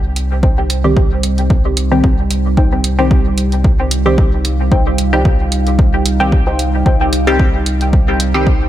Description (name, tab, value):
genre	dub techno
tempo	112 BPM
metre	4/4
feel	swing 55% on 16ths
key	C minor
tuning	A4 = 441 Hz
part	deep dark ambient pad	sustained chords	0.1-8.7 s	G3 to F5	-21 LUFS	right 2 dB	chorus, built-in reverb, sidechain pumping
part	warm sub bass	bass	0.0-8.7 s	C2	-16 LUFS	equal	sidechain pumping
part	electronic hi-hat	drums	0.2-8.3 s	none	-20 LUFS	right 3 dB	none
part	filtered dub chord stab	riff	0.4-7.1 s	Eb4 to G5	-25 LUFS	left 3 dB	chorus, sidechain pumping, dub echo
part	electronic kick drum	drums	0.4-8.6 s	none	-13 LUFS	equal	none
part	filtered dub chord stab	stabs	0.8-8.5 s	Eb3 to G4	-18 LUFS	equal	chorus, phaser, sidechain pumping, dub echo
room	digital ambience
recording	none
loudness	-11 LUFS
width	side -12 dB against mid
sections	0.0-8.7 A section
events	none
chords	0.0 Cm